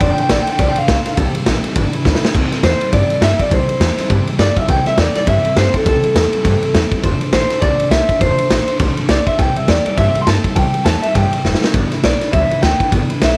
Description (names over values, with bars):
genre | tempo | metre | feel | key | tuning
rockabilly | 204 BPM | 4/4 | swing 59% on 8ths | C major | A4 = 439 Hz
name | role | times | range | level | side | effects
electric guitar through a small old amp | melody | 0.0-13.4 s | A4 to C6 | -20 LUFS | equal | tape echo
picked steel-string acoustic guitar | accompaniment | 0.0-13.4 s | C3 to C5 | -26 LUFS | equal | none
upright bass | bass | 0.0-13.3 s | F1 to G2 | -20 LUFS | equal | none
raw garage drum kit | drums | 0.0-13.3 s | crash cymbal, kick drum, ride cymbal, snare drum | -19 LUFS | equal | none
room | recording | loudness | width
small room ambience | none | -15 LUFS | mono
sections
0.0-2.3 A section; 2.3-13.4 B section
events
clean electric guitar solo 0.0-2.3; drum fill 2.0, 11.4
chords
0.0 F6; 1.2 C6; 1.8 G6; 2.3 C6; 7.0 F6; 9.4 C6; 11.7 G6